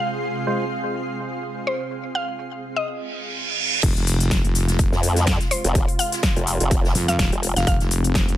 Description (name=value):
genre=bass house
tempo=125 BPM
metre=4/4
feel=swing 56% on 16ths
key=F minor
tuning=A4 = 440 Hz
part: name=mallet-like synth pluck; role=melody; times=0.0-7.8 s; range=C5 to F5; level=-27 LUFS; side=left 1 dB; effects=chorus, ping-pong delay
part: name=sweeping resonant pad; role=sustained chords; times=0.0-8.4 s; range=C3 to F4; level=-32 LUFS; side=equal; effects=wide subtle chorus, sidechain pumping
part: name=granular cloud pad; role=texture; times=0.0-2.9 s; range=C4 to C6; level=-30 LUFS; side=right 2 dB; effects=built-in reverb, sidechain pumping
part: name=big-room dance drum kit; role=drums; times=0.4-8.4 s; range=crash cymbal, hi-hat, shaker, snare drum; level=-25 LUFS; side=left 2 dB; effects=overdrive, low-pass filter on snare, low-pass filter on hats, low-pass filter on perc, low-pass filter on cymbals
part: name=percussive organ stab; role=stabs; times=0.5-0.6 s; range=Ab3 to C5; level=-29 LUFS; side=right 1 dB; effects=chorus, sidechain pumping, ping-pong delay
part: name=reverse cymbal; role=sound effects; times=3.1-3.8 s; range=none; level=-23 LUFS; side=right 6 dB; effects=none
part: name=wobble bass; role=bass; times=3.8-8.4 s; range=Eb1 to F2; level=-21 LUFS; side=equal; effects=chorus, tube saturation, sidechain pumping
part: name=electronic kick drum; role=drums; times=3.8-8.3 s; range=none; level=-22 LUFS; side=equal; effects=overdrive
part: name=natural country drum kit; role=drums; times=3.8-8.3 s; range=hi-hat, snare drum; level=-34 LUFS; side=left 2 dB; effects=high-pass filter on hats, high-pass filter on snare, high-pass filter on room
part: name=formant-sweep wobble bass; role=bass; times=4.9-7.5 s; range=F1 to F2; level=-21 LUFS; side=equal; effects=chorus, overdrive, sidechain pumping
room=little or no reverb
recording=none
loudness=-19 LUFS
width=side -13 dB against mid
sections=0.0-3.8 A section; 3.8-8.4 B section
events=reverse cymbal 3.1-3.8; drop 3.8-8.4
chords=0.0 Fm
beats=0.47 0.95 1.43 | 1.91 2.39 2.87 3.35 | 3.83 4.31 4.79 5.27 | 5.75 6.23 6.71 7.19 | 7.67 8.15